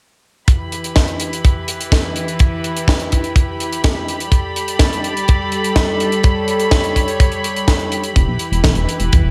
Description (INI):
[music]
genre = italo disco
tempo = 125 BPM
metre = 4/4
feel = straight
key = E dorian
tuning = A4 = 439 Hz
[part]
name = dark chamber string section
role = sustained chords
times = 0.5-9.3 s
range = E3 to B5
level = -23 LUFS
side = equal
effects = none
[part]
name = kick drum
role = drums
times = 0.5-9.2 s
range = none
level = -17 LUFS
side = equal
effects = none
[part]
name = tight funk drum kit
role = drums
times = 0.5-9.2 s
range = hi-hat, snare drum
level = -24 LUFS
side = equal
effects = gated reverb
[part]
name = chorused synth bass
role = bass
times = 8.2-9.3 s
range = E1 to B1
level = -19 LUFS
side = equal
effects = none
[sound]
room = moderate plate reverb, RT60 1.0 s, small room ambience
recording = bright 1980s-style digital production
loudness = -17 LUFS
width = mono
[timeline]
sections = 0.5-9.3 A section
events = none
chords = 0.5 Em; 4.3 Gadd9; 8.2 G